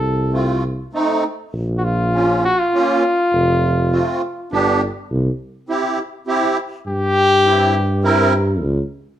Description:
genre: klezmer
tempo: 101 BPM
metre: 3/4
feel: straight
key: C major from 5.1 s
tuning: A4 = 440 Hz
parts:
  - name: warm cornet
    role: melody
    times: 0.0-8.3 s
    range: F4 to A4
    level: -17 LUFS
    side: left 1 dB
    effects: none
  - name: mellow tuba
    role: bass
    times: 0.0-8.8 s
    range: F1 to G2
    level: -19 LUFS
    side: equal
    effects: none
  - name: musette accordion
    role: accompaniment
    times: 0.3-8.3 s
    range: A3 to Bb4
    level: -19 LUFS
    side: right 2 dB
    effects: none
room: wet large studio reverb, RT60 0.9 s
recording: band playing live in one room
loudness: -15 LUFS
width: side -11 dB against mid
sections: 0.0-5.1 A section; 5.1-9.2 B section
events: speeding up 0.0-9.2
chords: 0.0 F; 1.5 Bbm; 3.3 F; 4.5 G; 5.1 C; 8.6 N.C.

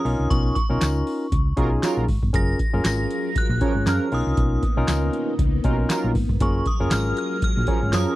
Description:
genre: early-eighties boogie funk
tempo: 118 BPM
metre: 4/4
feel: swing 56% on 16ths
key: unclear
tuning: A4 = 440 Hz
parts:
  - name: metallic FM bell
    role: melody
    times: 0.0-8.2 s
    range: C#6 to Bb6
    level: -30 LUFS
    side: right 1 dB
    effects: chorus, phaser, slapback echo
  - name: barky tine electric piano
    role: accompaniment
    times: 0.0-8.2 s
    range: C#4 to Db5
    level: -26 LUFS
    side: left 1 dB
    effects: overdrive
  - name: hollow-body short-scale fingered electric bass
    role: bass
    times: 0.1-8.0 s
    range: Gb1 to Gb2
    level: -23 LUFS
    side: equal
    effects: none
  - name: booming analog drum machine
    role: drums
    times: 0.1-8.1 s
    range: handclaps, hi-hat, kick drum, snare drum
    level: -23 LUFS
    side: equal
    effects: none
  - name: tambourine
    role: percussion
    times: 0.8-8.1 s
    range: none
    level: -38 LUFS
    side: left 13 dB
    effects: none
  - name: analog synth brass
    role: second line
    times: 1.6-8.1 s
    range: F3 to A#4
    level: -26 LUFS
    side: right 4 dB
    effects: chorus
  - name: string machine, full ensemble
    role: sustained chords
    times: 2.7-8.2 s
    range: Gb3 to Bb4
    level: -31 LUFS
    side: left 1 dB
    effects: ensemble chorus
room: little or no reverb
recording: dry, close 1970s-style studio recording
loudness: -19 LUFS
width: side -16 dB against mid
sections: 0.0-8.2 A section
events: none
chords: 0.1 Bmaj9#11; 2.3 Gbmaj9; 4.1 Bmaj9#11; 6.4 Gbmaj9

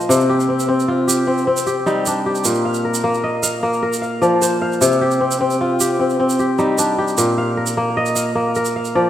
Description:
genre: west african traditional, West African string and xylophone music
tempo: 102 BPM (dotted quarters)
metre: 12/8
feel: straight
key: C minor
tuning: A4 = 440 Hz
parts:
  - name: kora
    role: arpeggios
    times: 0.0-9.1 s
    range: Bb2 to F5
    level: -16 LUFS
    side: left 1 dB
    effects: slapback echo
  - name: tube shaker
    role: percussion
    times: 0.0-8.9 s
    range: none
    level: -24 LUFS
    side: right 6 dB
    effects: none
room: wet lush hall reverb, RT60 2.5 s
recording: rough home demo mix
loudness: -15 LUFS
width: side -11 dB against mid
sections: 0.1-9.1 A section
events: none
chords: 0.1 Cm; 2.5 Bb; 4.8 Cm; 7.2 Bb

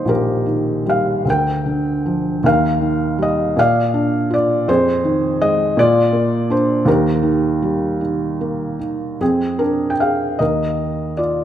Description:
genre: classical, lyrical solo piano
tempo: 50-55 BPM (dotted quarters)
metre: 6/8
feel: rubato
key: unclear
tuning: A4 = 440 Hz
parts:
  - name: felt-muted upright piano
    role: solo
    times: 0.0-11.4 s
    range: Bb1 to G5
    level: -15 LUFS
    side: equal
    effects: none
room: light reverb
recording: minimal, uncompressed stereo recording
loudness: -15 LUFS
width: side -10 dB against mid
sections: 0.0-9.2 A section; 9.2-11.4 B section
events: none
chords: 0.0 Eb; 1.3 Bb/D; 2.4 Ebadd9; 3.6 Bb; 4.7 Fm7; 5.8 Bb; 6.9 Eb; 9.2 Fm; 10.4 Ebsus2

